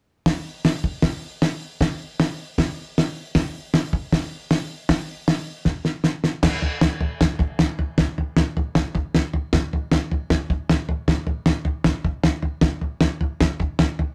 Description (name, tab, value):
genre	rock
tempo	155 BPM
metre	4/4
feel	straight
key	none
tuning	none
part	cloth-damped thuddy drum kit	drums	0.3-14.1 s	crash cymbal, hi-hat, kick drum, snare drum, toms	-22 LUFS	equal	none
room	moderate studio reverb, RT60 0.5 s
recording	rough rehearsal-room recording, tube saturation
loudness	-23 LUFS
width	mono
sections	0.3-6.4 A section; 6.4-14.1 B section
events	drum fill 5.7-6.4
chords	none